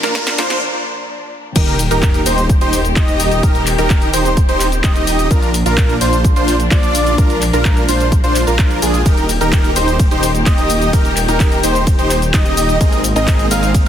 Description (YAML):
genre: EDM, festival progressive house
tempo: 128 BPM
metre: 4/4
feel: straight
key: Eb major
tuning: A4 = 440 Hz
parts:
  - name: clean electric guitar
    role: accompaniment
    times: 0.0-0.6 s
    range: Bb2 to Bb4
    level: -26 LUFS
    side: left 1 dB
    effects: lush chorus, sidechain pumping, digital delay
  - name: dark studio string section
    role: sustained chords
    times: 0.0-13.9 s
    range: Bb2 to G4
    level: -23 LUFS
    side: left 2 dB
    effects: sidechain pumping
  - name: wide unison lead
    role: arpeggios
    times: 0.0-13.9 s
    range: Ab4 to F5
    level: -21 LUFS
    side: equal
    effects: sidechain pumping, digital delay
  - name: dense compressed supersaw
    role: riff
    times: 0.0-13.9 s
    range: C4 to F5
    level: -19 LUFS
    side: right 1 dB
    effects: sidechain pumping, digital delay
  - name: house drum kit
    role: drums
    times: 0.0-13.9 s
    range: cabasa, crash cymbal, handclaps, hi-hat, ride cymbal, snare drum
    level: -21 LUFS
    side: left 1 dB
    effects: none
  - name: riser and sub drop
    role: sound effects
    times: 0.0-3.4 s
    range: none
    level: -24 LUFS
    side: equal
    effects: none
  - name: electronic kick drum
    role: drums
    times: 0.2-13.8 s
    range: none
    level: -14 LUFS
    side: equal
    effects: high-pass filter on kick
  - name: wide detuned saw bass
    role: bass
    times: 1.6-13.9 s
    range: Eb1 to Bb1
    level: -19 LUFS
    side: equal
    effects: chorus, sidechain pumping
room: light reverb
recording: dense, heavily limited modern master, high-pass filter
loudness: -12 LUFS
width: side -10 dB against mid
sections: 0.0-1.6 A section; 1.6-13.9 B section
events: build-up 0.0-1.6; drum fill 0.0-0.6; riser 0.0-0.6; filter sweep on analog synth lead 0.0-1.6; break 0.6-1.6; drop 1.6-13.9; impact 1.6-3.4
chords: 0.0 Bb; 1.6 Eb; 5.3 Bb; 9.1 Eb; 12.8 Abadd9